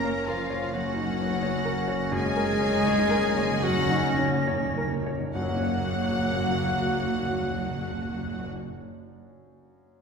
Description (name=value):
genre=cinematic, emotional film score for orchestra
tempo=34-44 BPM (dotted quarters)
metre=6/8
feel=rubato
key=F# major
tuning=A4 = 439 Hz
part: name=bright symphonic violin section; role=melody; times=0.0-8.5 s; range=E#5 to A#5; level=-34 LUFS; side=left 2 dB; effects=none
part: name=mellow clarinet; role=second line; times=0.0-8.5 s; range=A#3 to C#4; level=-36 LUFS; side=left 1 dB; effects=none
part: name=rich symphonic violin section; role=second line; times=0.0-8.5 s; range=E#4 to F#5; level=-38 LUFS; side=left 3 dB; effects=none
part: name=silver concert flute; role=second line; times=0.0-8.5 s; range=F#6 to A#6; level=-36 LUFS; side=left 2 dB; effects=none
part: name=warm oboe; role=second line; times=0.0-8.5 s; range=E#4 to F#5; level=-36 LUFS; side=right 2 dB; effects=none
part: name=clear concert grand piano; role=accompaniment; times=0.0-10.0 s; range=F#2 to C#5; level=-32 LUFS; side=left 1 dB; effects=none
part: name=rich symphonic viola section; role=accompaniment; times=0.0-8.5 s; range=A#3 to F#4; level=-36 LUFS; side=right 2 dB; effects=none
part: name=mellow French horn section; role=sustained chords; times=0.0-8.5 s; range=E#3 to A#3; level=-31 LUFS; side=left 4 dB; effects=none
part: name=rich symphonic cello section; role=bass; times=0.0-8.5 s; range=E#3 to A#3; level=-34 LUFS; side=right 5 dB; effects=none
part: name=rich symphonic double bass section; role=bass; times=0.0-8.5 s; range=F#1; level=-34 LUFS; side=right 3 dB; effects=none
part: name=timpani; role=percussion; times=0.0-8.5 s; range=F#2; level=-34 LUFS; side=right 1 dB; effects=none
room=wet scoring stage reverb, RT60 1.5 s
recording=minimal, uncompressed stereo recording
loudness=-24 LUFS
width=side -5 dB against mid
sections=0.0-5.3 A section; 5.3-8.6 B section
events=timpani fill 0.0-5.3; slowing down 0.0-5.3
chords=0.0 F#